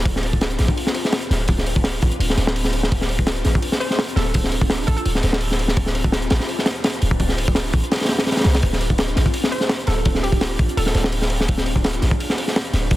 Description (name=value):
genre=drum and bass, jungle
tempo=168 BPM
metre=4/4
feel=swing 53% on 16ths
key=D dorian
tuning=A4 = 440 Hz
part: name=ethereal airy pad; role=sustained chords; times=0.0-13.0 s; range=C4 to B4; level=-29 LUFS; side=left 1 dB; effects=ensemble chorus, built-in reverb, phaser
part: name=warm 808-style bass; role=bass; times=0.0-13.0 s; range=D1 to C2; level=-22 LUFS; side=equal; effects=none
part: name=crunchy breakbeat drum kit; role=drums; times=0.1-13.0 s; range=hi-hat, kick drum, snare drum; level=-19 LUFS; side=equal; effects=none
part: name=hollow square pluck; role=melody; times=3.8-5.0, 9.5-10.9 s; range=G4 to C5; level=-30 LUFS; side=right 1 dB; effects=chorus, dub echo
room=small room ambience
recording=dense, heavily limited modern master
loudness=-17 LUFS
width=side -16 dB against mid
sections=0.0-13.0 A section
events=none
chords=0.0 Dm7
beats=| 0.06 0.41 0.77 1.13 | 1.48 1.84 2.20 2.56 | 2.91 3.27 3.63 3.98 | 4.34 4.70 5.05 5.41 | 5.77 6.13 6.48 6.84 | 7.20 7.55 7.91 8.27 | 8.63 8.98 9.34 9.70 | 10.05 10.41 10.77 11.13 | 11.48 11.84 12.20 12.55 | 12.91